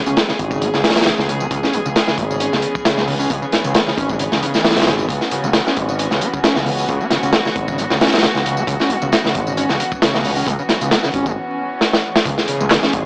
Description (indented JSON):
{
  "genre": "breakbeat, breaks",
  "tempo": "134 BPM",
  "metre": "4/4",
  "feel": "swing 55% on 16ths",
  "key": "C# minor pentatonic",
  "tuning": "A4 = 442 Hz",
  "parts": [
    { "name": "rich chamber string section", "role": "sustained chords", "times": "0.0-13.1 s", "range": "E3 to G#4", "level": "-23 LUFS", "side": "equal", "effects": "sidechain pumping" },
    { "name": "screaming distorted acid line", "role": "riff", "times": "0.1-13.0 s", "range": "C#2 to C#4", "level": "-23 LUFS", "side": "equal", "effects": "distortion, wide subtle chorus, analog delay" },
    { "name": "growling fingered electric bass", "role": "bass", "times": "0.1-13.1 s", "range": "G#1 to C#2", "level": "-22 LUFS", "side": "equal", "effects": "overdrive, tube saturation" },
    { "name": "crunchy breakbeat drum kit", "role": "drums", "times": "0.1-13.0 s", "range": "hi-hat, kick drum, snare drum", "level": "-16 LUFS", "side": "equal", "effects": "none" },
    { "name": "electronic tambourine and handclaps", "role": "drums", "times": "0.1-12.9 s", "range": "none", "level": "-31 LUFS", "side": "equal", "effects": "none" },
    { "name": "congas", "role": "percussion", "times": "0.1-11.2 s", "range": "none", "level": "-30 LUFS", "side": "equal", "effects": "none" },
    { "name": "swell and impact", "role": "sound effects", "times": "11.6-13.1 s", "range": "none", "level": "-31 LUFS", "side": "equal", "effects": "none" }
  ],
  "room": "light reverb, small room ambience",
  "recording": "dry, gritty hardware recording, transformer saturation, vinyl crackle, small speaker sound",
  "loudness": "-14 LUFS",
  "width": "side -37 dB against mid",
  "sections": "0.0-12.3 A section",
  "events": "drum fill 11.8-12.3; impact 12.3-13.1",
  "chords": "0.0 C#m7",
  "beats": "0.17 0.62 1.06 | 1.51 1.96 2.41 2.86 | 3.30 3.75 4.20 4.65 | 5.09 5.54 5.99 6.44 | 6.89 7.33 7.78 8.23 | 8.68 9.12 9.57 10.02 | 10.47 10.92 11.36 11.81 | 12.26 12.71"
}